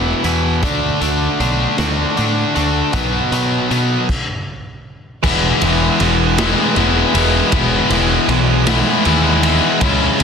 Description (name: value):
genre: quiet-loud alternative rock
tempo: 52 BPM (dotted quarters)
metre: 6/8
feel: straight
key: E major from 5.2 s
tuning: A4 = 440 Hz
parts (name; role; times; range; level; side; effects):
- twangy electric guitar; arpeggios; 0.0-4.1 s; E2 to F#4; -26 LUFS; right 11 dB; phaser
- overdriven electric guitar; riff; 0.0-10.2 s; E2 to E4; -19 LUFS; right 15 dB; none
- overdriven semi-hollow guitar; riff; 0.0-10.2 s; E2 to E4; -17 LUFS; left 13 dB; none
- fuzz picked electric bass; bass; 0.0-10.2 s; E1 to B2; -19 LUFS; equal; overdrive
- raw garage drum kit; drums; 0.2-10.2 s; crash cymbal, hi-hat, kick drum, ride cymbal, snare drum; -21 LUFS; right 1 dB; none
room: light reverb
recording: dense, heavily limited modern master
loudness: -13 LUFS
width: side -6 dB against mid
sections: 0.0-5.2 A section; 5.2-10.2 B section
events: stop 4.1-5.2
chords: 0.0 E5; 0.6 D; 2.9 B; 5.2 E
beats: | 0.64 1.79 | 2.94 4.08 | 5.23 6.38 | 7.53 8.67 | 9.81